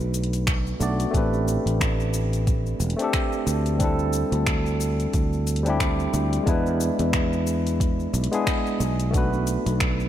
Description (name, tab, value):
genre	sunset chillout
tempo	90 BPM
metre	4/4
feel	swing 58% on 16ths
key	A dorian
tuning	A4 = 442 Hz
part	tine electric piano	accompaniment	0.0-10.1 s	G3 to D5	-25 LUFS	equal	auto-pan, ping-pong delay
part	sustaining fretless electric bass	bass	0.0-10.1 s	E1 to E2	-24 LUFS	equal	tube saturation
part	deep house drum kit	drums	0.0-10.1 s	cabasa, finger snaps, hi-hat	-31 LUFS	left 1 dB	overdrive
part	electronic kick drum	drums	0.5-10.0 s	none	-25 LUFS	equal	overdrive
room	moderate plate reverb, RT60 3.7 s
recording	bright 1980s-style digital production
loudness	-21 LUFS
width	side -11 dB against mid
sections	0.0-10.1 A section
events	none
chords	0.0 Bm7; 1.1 Am11; 3.8 D9sus4; 6.5 E7; 8.8 Bm7